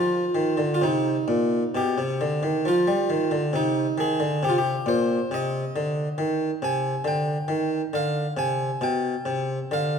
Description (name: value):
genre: classical, baroque-style suite movement for harpsichord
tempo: 68 BPM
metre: 4/4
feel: rubato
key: C minor from 5.3 s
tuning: A4 = 445 Hz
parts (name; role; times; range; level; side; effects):
- harpsichord; solo; 0.0-10.0 s; Bb2 to Ab5; -22 LUFS; equal; none
room: moderate recital hall reverb, RT60 1.9 s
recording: none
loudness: -22 LUFS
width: side -6 dB against mid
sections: 0.0-10.0 A section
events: none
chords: 0.0 Cm; 1.7 G/B; 3.5 Cm; 5.3 Cmadd9; 8.8 G/B